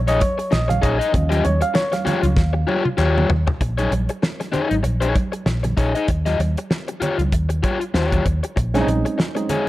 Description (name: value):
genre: funk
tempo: 97 BPM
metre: 4/4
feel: swing 56% on 16ths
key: Bb dorian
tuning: A4 = 441 Hz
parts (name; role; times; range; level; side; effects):
- vintage muted fingered electric bass; bass; 0.0-9.5 s; Ab1 to Eb2; -20 LUFS; equal; none
- crunchy overdriven guitar; accompaniment; 0.1-9.7 s; Eb4 to Eb5; -23 LUFS; left 4 dB; none
- bright reed electric piano; stabs; 0.1-2.8, 8.7-9.7 s; F3 to F5; -23 LUFS; right 2 dB; phaser, analog delay
- damped 70s drum kit; drums; 0.1-9.7 s; hi-hat, kick drum, snare drum, toms; -22 LUFS; equal; none
- congas; percussion; 0.1-9.7 s; none; -28 LUFS; right 3 dB; none
- group handclap; percussion; 0.5-3.1 s; none; -36 LUFS; left 5 dB; none
room: studio ambience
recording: none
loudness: -17 LUFS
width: side -16 dB against mid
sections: 0.0-3.6 A section; 3.6-9.7 B section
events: reed electric piano solo 0.0-3.6; drum fill 2.4-3.6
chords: 0.0 Bbm11; 1.1 Eb9; 3.6 Bbm7; 6.1 Eb9; 8.6 Bbm11